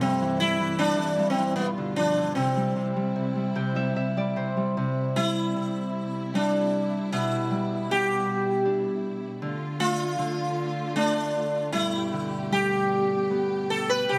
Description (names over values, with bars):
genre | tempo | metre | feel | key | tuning
children's music, lullaby | 77 BPM | 3/4 | rubato | C major | A4 = 440 Hz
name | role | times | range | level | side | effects
sitar | melody | 0.0-14.2 s | B3 to B4 | -28 LUFS | equal | none
Celtic harp | accompaniment | 0.0-14.2 s | G2 to G5 | -30 LUFS | equal | none
rich studio string section | sustained chords | 0.0-14.2 s | G2 to G4 | -38 LUFS | equal | none
room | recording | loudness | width
light reverb | close, detailed microphones | -26 LUFS | mono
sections
0.0-4.8 A section; 4.8-14.2 B section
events
harp fill 3.2-4.8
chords
0.0 C/G; 1.6 G7; 2.4 C; 7.1 G6/B; 9.4 Dm; 11.7 Gadd9